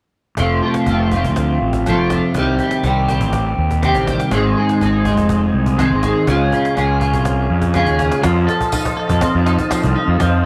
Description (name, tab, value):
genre	psychedelic rock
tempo	122 BPM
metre	4/4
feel	straight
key	unclear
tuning	A4 = 440 Hz
part	clean electric guitar	riff	0.4-10.5 s	F2 to A4	-19 LUFS	equal	flanger, double-tracked
part	fuzz fingered electric bass	bass	0.4-10.4 s	F1 to F2	-20 LUFS	equal	overdrive
part	cajon	drums	0.4-10.3 s	none	-28 LUFS	equal	none
part	mellow tonewheel organ	sustained chords	4.3-10.5 s	Ab4 to A5	-28 LUFS	equal	chorus vibrato, slow rotary speaker
part	tambourine	percussion	8.7-9.8 s	none	-34 LUFS	equal	none
room	light reverb, studio reverb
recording	none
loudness	-16 LUFS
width	mono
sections	0.4-8.2 A section; 8.2-10.5 B section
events	kick and snare drop out 7.7-8.2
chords	0.4 F; 2.3 Cm; 4.3 Ab; 6.3 Db; 8.2 F7